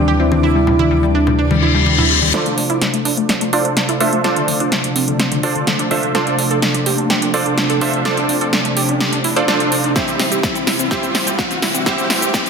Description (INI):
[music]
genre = progressive house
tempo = 126 BPM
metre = 4/4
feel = straight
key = D minor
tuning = A4 = 444 Hz
[part]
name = warm analog pad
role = sustained chords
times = 0.0-12.5 s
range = D2 to E4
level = -22 LUFS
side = equal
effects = wide subtle chorus, sidechain pumping
[part]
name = round analog bass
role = bass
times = 0.0-2.3 s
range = D2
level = -18 LUFS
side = equal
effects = sidechain pumping
[part]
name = backwards swelling texture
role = texture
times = 0.0-2.3 s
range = D5 to D6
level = -32 LUFS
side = equal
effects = built-in reverb, sidechain pumping
[part]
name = analog pluck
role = arpeggios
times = 0.1-12.5 s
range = D3 to A4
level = -22 LUFS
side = equal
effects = chorus, sidechain pumping, ping-pong delay
[part]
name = warm velvety synth lead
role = melody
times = 0.2-1.8 s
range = E4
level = -20 LUFS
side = right 2 dB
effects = chorus, cassette tape, ping-pong delay
[part]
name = congas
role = percussion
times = 0.3-2.3 s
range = none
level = -21 LUFS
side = left 2 dB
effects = overdrive, sidechain pumping on perc
[part]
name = reverse cymbal and riser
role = sound effects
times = 1.5-12.5 s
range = none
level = -22 LUFS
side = left 3 dB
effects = none
[part]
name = supersaw stab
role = stabs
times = 2.3-12.5 s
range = C4 to E5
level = -20 LUFS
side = right 2 dB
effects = sidechain pumping, low-pass filter, ping-pong delay
[part]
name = big-room dance drum kit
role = drums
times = 2.3-12.5 s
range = cabasa, hi-hat, snare drum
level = -19 LUFS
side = equal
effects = none
[part]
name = electronic kick drum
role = drums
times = 10.0-12.4 s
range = none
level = -25 LUFS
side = equal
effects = none
[sound]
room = moderate digital room reverb, RT60 1.0 s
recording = dense, heavily limited modern master, high-pass filter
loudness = -14 LUFS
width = side -6 dB against mid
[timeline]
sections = 0.0-2.3 A section; 2.3-12.5 B section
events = filter sweep on analog synth pad 0.0-2.3, 2.3-12.5; reverse cymbal 1.5-2.3; build-up 2.3-12.5; drum fill 2.3-12.5; riser 2.3-12.5; filter sweep on synth pluck 2.3-12.5; filter sweep on supersaw synth 2.3-12.5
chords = 0.0 C/D; 2.3 Dm7; 10.0 C/D